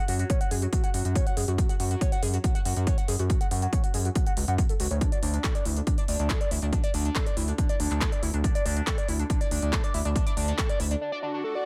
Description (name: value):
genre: driving peak-time techno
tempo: 140 BPM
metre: 4/4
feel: straight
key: unclear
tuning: A4 = 440 Hz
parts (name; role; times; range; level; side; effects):
- overdriven synth lead; riff; 0.0-11.6 s; D4 to F#5; -34 LUFS; equal; distortion, phaser, tube saturation, sidechain pumping, digital delay
- gritty driven synth bass; bass; 0.1-11.0 s; C#2 to F#2; -30 LUFS; equal; sidechain pumping
- techno drum kit; drums; 0.1-11.0 s; handclaps, hi-hat; -36 LUFS; equal; none
- electronic kick drum; drums; 0.3-10.7 s; none; -28 LUFS; equal; none
- swell; sound effects; 11.1-11.7 s; none; -38 LUFS; equal; none
room: little or no reverb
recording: none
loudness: -26 LUFS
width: mono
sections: 0.0-11.7 A section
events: filter sweep on analog synth lead 0.0-11.7; swell 11.1-11.7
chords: 0.0 F#5; 5.0 D5